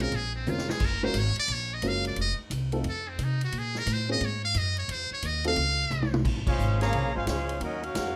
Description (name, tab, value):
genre	jazz, big band swing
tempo	176 BPM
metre	4/4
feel	swing 65% on 8ths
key	Bb minor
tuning	A4 = 439 Hz
part	trumpet with metal mute	melody	0.0-6.2 s	C4 to F5	-32 LUFS	equal	none
part	dark upright piano	accompaniment	0.0-5.6 s	Ab3 to Bb4	-34 LUFS	equal	none
part	upright bass	bass	0.0-8.2 s	F1 to C3	-33 LUFS	equal	none
part	swinging big-band drum kit	drums	0.0-8.1 s	crash cymbal, hi-hat, kick drum, ride cymbal, snare drum, toms	-36 LUFS	equal	none
part	warm trumpet section	melody	6.5-8.2 s	Db4 to Bb5	-33 LUFS	equal	none
part	warm trombone section	second line	6.5-8.2 s	Db3 to Gb4	-36 LUFS	equal	none
room	light reverb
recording	none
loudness	-28 LUFS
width	mono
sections	0.0-6.3 A section; 6.3-8.2 B section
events	muted trumpet solo 0.0-6.3; drum fill 0.5-0.8, 5.9-6.3; band accent 6.4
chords	0.0 Bbm9; 0.8 Gbmaj7; 2.2 F7; 3.5 Bbm7; 4.9 F7; 6.3 Bbm9; 7.6 Ebm9